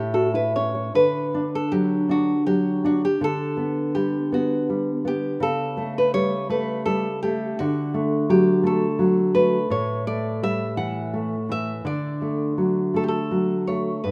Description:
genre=romantic duo for nylon-string guitar and classical guitar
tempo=49-58 BPM (dotted quarters)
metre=6/8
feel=rubato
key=D major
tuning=A4 = 441 Hz
part: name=nylon-string guitar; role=melody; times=0.0-14.1 s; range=F#4 to F#5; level=-28 LUFS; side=equal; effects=none
part: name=nylon-string guitar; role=accompaniment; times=0.0-14.1 s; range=G2 to C#5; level=-24 LUFS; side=equal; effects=none
room=moderate lush hall reverb, RT60 2.8 s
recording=rough home demo mix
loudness=-23 LUFS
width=mono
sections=0.9-14.1 A section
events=none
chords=0.0 A; 0.9 D; 3.2 G/D; 5.4 A7/C#; 7.6 D; 9.7 A5; 11.9 D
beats=| 0.94 2.08 | 3.21 4.31 | 5.41 6.50 | 7.58 8.63 | 9.71 10.78 | 11.86 12.96 | 14.05

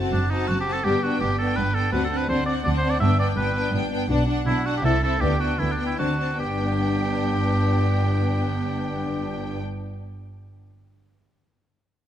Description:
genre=quick classical-period movement for symphony orchestra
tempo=144-167 BPM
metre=3/4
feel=straight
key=G major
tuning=A4 = 441 Hz
part: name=warm studio violin section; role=melody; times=0.0-9.6 s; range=E5 to A5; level=-35 LUFS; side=left 1 dB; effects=none
part: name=warm studio violin section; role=second line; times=0.0-9.6 s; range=D4 to F#4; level=-32 LUFS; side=left 2 dB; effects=none
part: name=rich studio viola section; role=accompaniment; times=0.0-9.6 s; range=B3 to D4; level=-29 LUFS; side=left 1 dB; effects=none
part: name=rich studio double bass section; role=bass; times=0.0-9.6 s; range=F#1 to D2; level=-28 LUFS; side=right 2 dB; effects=none
part: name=warm studio cello section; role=bass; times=0.0-9.6 s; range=D2 to D3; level=-27 LUFS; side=right 1 dB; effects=none
part: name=clear oboe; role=second line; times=0.1-9.6 s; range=D4 to E5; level=-27 LUFS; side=right 1 dB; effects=none
part: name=mellow French horn section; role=sustained chords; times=0.8-9.6 s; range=B3 to G4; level=-30 LUFS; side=left 4 dB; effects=none
room=moderate concert hall reverb, RT60 2.2 s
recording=none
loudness=-21 LUFS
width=side -10 dB against mid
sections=0.0-6.4 A section; 6.4-8.8 B section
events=slowing down 3.6-6.4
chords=0.0 F#dim; 0.8 G; 1.9 D7; 3.0 G; 4.1 Bm; 4.8 Am/C; 5.2 G/D; 6.0 D7; 6.4 G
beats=0.12 0.48 | 0.85 1.21 1.57 | 1.93 2.29 2.65 | 3.01 3.37 3.73 | 4.10 4.46 4.84 | 5.21 5.60 5.99 | 6.40 6.80 7.21 | 7.62 8.03 8.43

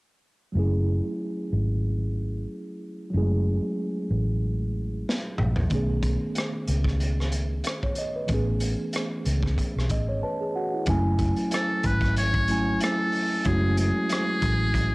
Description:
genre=R&B, neo-soul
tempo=93 BPM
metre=4/4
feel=swing 55% on 16ths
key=F# dorian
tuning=A4 = 440 Hz
part: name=mellow tine electric piano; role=accompaniment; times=0.5-14.9 s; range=D#3 to A5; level=-28 LUFS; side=equal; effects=fast stereo tremolo, cassette tape
part: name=vintage muted fingered electric bass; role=bass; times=0.6-14.9 s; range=F#1 to C#2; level=-25 LUFS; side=equal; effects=none
part: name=crunchy breakbeat drum kit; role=drums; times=5.1-14.9 s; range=hi-hat, kick drum, rim click, snare drum, toms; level=-30 LUFS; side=equal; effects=cassette tape
part: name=trumpet with metal mute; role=melody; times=11.5-14.9 s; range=G#4 to C#5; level=-27 LUFS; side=equal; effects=cassette tape
room=light reverb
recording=home recording on cassette, lossy compression artefacts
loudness=-23 LUFS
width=side -24 dB against mid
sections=0.5-10.9 A section; 10.9-14.9 B section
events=drum fill 5.1-5.7; tine electric piano fill 9.9-10.9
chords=0.5 F#m9; 5.7 B13; 8.3 Amaj9; 10.9 F#m9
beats=| 0.55 1.19 1.84 2.48 | 3.13 3.77 4.42 5.07 | 5.71 6.36 7.00 7.65 | 8.29 8.94 9.58 10.23 | 10.87 11.52 12.16 12.81 | 13.45 14.10 14.74

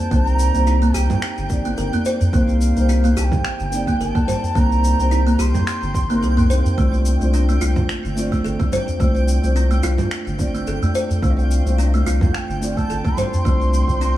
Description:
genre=organic downtempo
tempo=108 BPM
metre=4/4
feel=swing 55% on 16ths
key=C dorian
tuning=A4 = 440 Hz
part: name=bansuri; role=melody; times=0.0-6.5, 11.2-14.2 s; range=Eb5 to C6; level=-27 LUFS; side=right 3 dB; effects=digital delay
part: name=felt-muted upright piano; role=accompaniment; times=0.0-14.2 s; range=A3 to D5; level=-25 LUFS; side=equal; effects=sidechain pumping, digital delay
part: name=twinkling granular texture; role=texture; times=0.0-14.2 s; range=G5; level=-35 LUFS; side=right 4 dB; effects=built-in reverb
part: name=kalimba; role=arpeggios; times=0.1-14.1 s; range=A3 to C5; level=-24 LUFS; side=right 1 dB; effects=digital delay
part: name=round analog bass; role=bass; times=0.1-14.2 s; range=G1 to C2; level=-18 LUFS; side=equal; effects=tube saturation, sidechain pumping
part: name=electronic kick drum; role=drums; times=0.1-14.0 s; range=none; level=-22 LUFS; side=equal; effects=overdrive
part: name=electronic shaker, congas and finger snaps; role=drums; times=0.1-14.1 s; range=none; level=-28 LUFS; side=right 2 dB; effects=overdrive
part: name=udu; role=percussion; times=1.1-13.4 s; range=none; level=-22 LUFS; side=right 1 dB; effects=none
room=light reverb, studio reverb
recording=none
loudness=-16 LUFS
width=side -14 dB against mid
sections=0.0-14.2 A section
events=none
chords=0.0 Cm7; 6.8 Dm7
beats=| 0.12 0.68 1.23 1.79 | 2.34 2.90 3.45 4.01 | 4.56 5.12 5.67 6.23 | 6.79 7.34 7.90 8.45 | 9.01 9.56 10.12 10.68 | 11.23 11.79 12.34 12.90 | 13.45 14.01

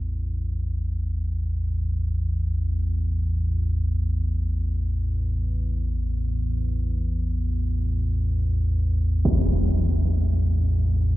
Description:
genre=dark ambient drone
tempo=free time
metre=none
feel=none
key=unclear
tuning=A4 = 440 Hz
part: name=deep rumbling drone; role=drone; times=0.0-11.2 s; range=A1 to E2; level=-22 LUFS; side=equal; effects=built-in reverb, lush chorus
part: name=impact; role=percussion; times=9.3-9.4 s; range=none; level=-25 LUFS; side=equal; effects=low-pass filter on sfx
room=wet cathedral reverb, RT60 6.0 s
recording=none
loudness=-22 LUFS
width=side -17 dB against mid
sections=0.0-11.2 A section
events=none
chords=0.0 A5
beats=free time

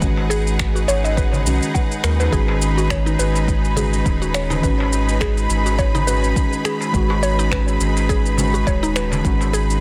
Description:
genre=organic downtempo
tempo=104 BPM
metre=4/4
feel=swing 56% on 16ths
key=G# minor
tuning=A4 = 441 Hz
part: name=muted felt-like synth keys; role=accompaniment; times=0.0-9.8 s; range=D#3 to F#4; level=-26 LUFS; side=equal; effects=chorus, sidechain pumping, tape echo
part: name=rich symphonic string section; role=sustained chords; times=0.0-9.8 s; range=D#4 to B5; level=-27 LUFS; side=equal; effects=sidechain pumping
part: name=mallet-like synth pluck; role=arpeggios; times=0.0-9.7 s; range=D#4 to F#5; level=-28 LUFS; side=equal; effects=chorus, phaser, tape echo
part: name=round analog bass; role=bass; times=0.0-9.8 s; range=D#1 to D#2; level=-23 LUFS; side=equal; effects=tube saturation
part: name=electronic kick drum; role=drums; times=0.0-9.4 s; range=none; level=-24 LUFS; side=equal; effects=none
part: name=electronic shaker and finger snaps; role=drums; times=0.0-9.8 s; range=none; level=-31 LUFS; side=equal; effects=soft clipping on snare
part: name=bronze singing bowl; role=texture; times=0.0-9.8 s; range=none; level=barely audible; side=none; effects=none
part: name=darbuka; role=percussion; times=0.2-9.5 s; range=none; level=-32 LUFS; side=equal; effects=none
room=small room reverb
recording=dense, heavily limited modern master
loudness=-19 LUFS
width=mono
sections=0.0-9.8 A section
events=none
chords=0.0 G#m7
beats=| 0.02 0.59 1.17 1.75 | 2.33 2.90 3.48 4.06 | 4.63 5.21 5.79 6.36 | 6.94 7.52 8.10 8.67 | 9.25

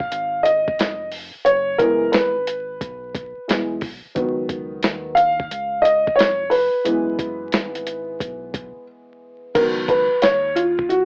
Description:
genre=hip hop, jazz-hop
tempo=89 BPM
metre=4/4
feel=swing 66% on 16ths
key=unclear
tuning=A4 = 440 Hz
part: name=dark grand piano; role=accompaniment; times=0.0-11.1 s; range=Eb3 to F5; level=-18 LUFS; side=equal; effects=cassette tape
part: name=deep dub fingered electric bass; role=bass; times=0.0-11.1 s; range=F1 to Eb2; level=-38 LUFS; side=equal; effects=none
part: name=dusty soul sampler-style drum kit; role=drums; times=0.0-11.1 s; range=crash cymbal, hi-hat, kick drum, snare drum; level=-23 LUFS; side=equal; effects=cassette tape
room=moderate small room reverb, RT60 0.6 s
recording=home recording on cassette, vinyl crackle, AM radio sound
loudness=-17 LUFS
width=side -35 dB against mid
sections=0.0-9.6 A section; 9.6-11.1 B section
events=grand piano solo 0.0-9.6, 9.6-11.1; break 8.9-9.6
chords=0.0 Dbsus2 (rootless); 1.5 Gb9sus4; 4.2 Db9sus4; 6.9 Gb9sus4; 9.6 Db9sus4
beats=0.11 0.79 | 1.46 2.14 2.81 3.48 | 4.16 4.83 5.51 6.18 | 6.86 7.53 8.20 8.88 | 9.55 10.23 10.90

